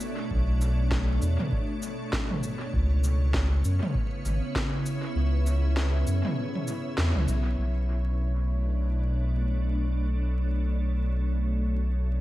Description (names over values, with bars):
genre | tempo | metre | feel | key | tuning
ambient dub | 99 BPM | 4/4 | swing 59% on 16ths | B minor | A4 = 440 Hz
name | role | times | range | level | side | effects
soft additive organ-like pad | sustained chords | 0.0-12.2 s | B2 to C#5 | -32 LUFS | equal | ensemble chorus, built-in reverb
organic electronic drum kit | drums | 0.0-7.4 s | cabasa, snare drum, toms | -33 LUFS | equal | low-pass filter on perc, low-pass filter on snare, low-pass filter on toms, low-pass filter on room, dub echo
warm sub bass | bass | 0.3-12.2 s | G#1 to F#2 | -25 LUFS | equal | none
electronic kick drum | drums | 0.3-4.7 s | none | -31 LUFS | equal | none
room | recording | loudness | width
light reverb | vinyl crackle | -25 LUFS | side -16 dB against mid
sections
0.0-7.6 A section; 7.6-12.2 B section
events
kick drops out 5.2-7.6; band accent 7.0-7.3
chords
0.0 Bm9; 2.7 C#m7; 7.6 Bm9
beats
| 0.31 0.92 1.52 2.13 | 2.73 3.34 3.95 4.55 | 5.16 5.76 6.37 6.98 | 7.58 8.19 8.79 9.40 | 10.01 10.61 11.22 11.83